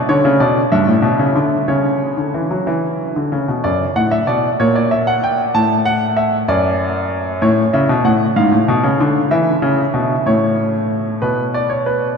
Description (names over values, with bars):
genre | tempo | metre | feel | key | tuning
classical, baroque-style two-part invention for grand piano | 63 BPM (dotted quarters) | 6/8 | straight | unclear | A4 = 440 Hz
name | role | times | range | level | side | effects
clear grand piano | solo | 0.1-12.2 s | F#2 to A5 | -14 LUFS | equal | none
room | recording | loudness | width
wet cathedral reverb, RT60 4.9 s | in a vast, echoing space | -14 LUFS | side -5 dB against mid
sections
0.0-3.6 A section; 3.6-11.2 B section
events
none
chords
0.0 Bm; 0.7 Em7/G; 1.7 Bmadd9 (rootless); 3.6 D/F#; 4.6 C#dim7/A#; 5.5 A5; 6.5 D/F#; 7.4 A; 8.4 G#dim7; 9.3 E5; 10.3 A; 11.2 Bmadd9